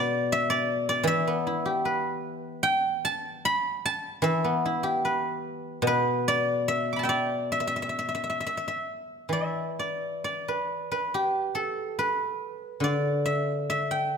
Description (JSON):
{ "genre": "chinese traditional, Chinese solo plucked strings", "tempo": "66-80 BPM", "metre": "4/4", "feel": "rubato", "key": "E yu mode", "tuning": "A4 = 435 Hz", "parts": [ { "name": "guzheng", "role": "solo", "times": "0.0-14.2 s", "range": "B2 to D6", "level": "-25 LUFS", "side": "equal", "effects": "none" } ], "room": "moderate recital hall reverb, RT60 1.7 s", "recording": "none", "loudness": "-25 LUFS", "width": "side -6 dB against mid", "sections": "0.0-9.3 A section; 9.3-14.2 B section", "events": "none", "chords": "none" }